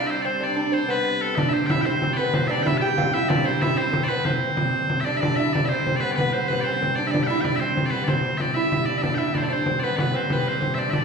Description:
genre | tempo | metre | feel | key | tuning
medieval dance | 126 BPM (dotted quarters) | 6/8 | straight | C major | A4 = 441 Hz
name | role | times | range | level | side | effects
loud bright bagpipes | melody | 0.0-11.0 s | A4 to A5 | -24 LUFS | equal | none
lute | second line | 0.0-11.0 s | B3 to G4 | -26 LUFS | right 2 dB | none
rich hurdy-gurdy | drone | 0.0-11.0 s | C3 to G3 | -32 LUFS | left 1 dB | none
frame drum | percussion | 1.4-11.0 s | none | -25 LUFS | left 1 dB | none
room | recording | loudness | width
wet recital hall reverb, RT60 1.4 s | heard from further back in the room, studio reverb | -20 LUFS | side -5 dB against mid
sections
0.0-5.2 A section; 5.2-11.0 B section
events
none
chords
none

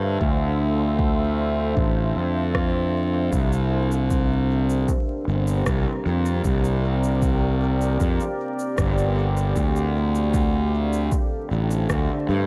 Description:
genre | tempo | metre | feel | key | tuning
ambient dub | 77 BPM | 4/4 | straight | D minor | A4 = 440 Hz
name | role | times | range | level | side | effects
deep dark ambient pad | sustained chords | 0.0-12.5 s | C4 to F5 | -29 LUFS | equal | chorus, built-in reverb
fuzz fingered electric bass | bass | 0.0-12.5 s | G1 to G2 | -24 LUFS | equal | overdrive
electronic kick drum | drums | 0.2-12.1 s | none | -27 LUFS | equal | overdrive
electronic rim click and cabasa | drums | 2.5-12.1 s | none | -37 LUFS | equal | overdrive, dub echo
room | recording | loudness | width
moderate lush hall reverb, RT60 2.6 s | dreamy mix soaked in reverb, vinyl crackle | -22 LUFS | mono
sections
0.0-12.5 A section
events
none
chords
0.0 Dm7; 3.3 C9sus4; 9.6 Dm7

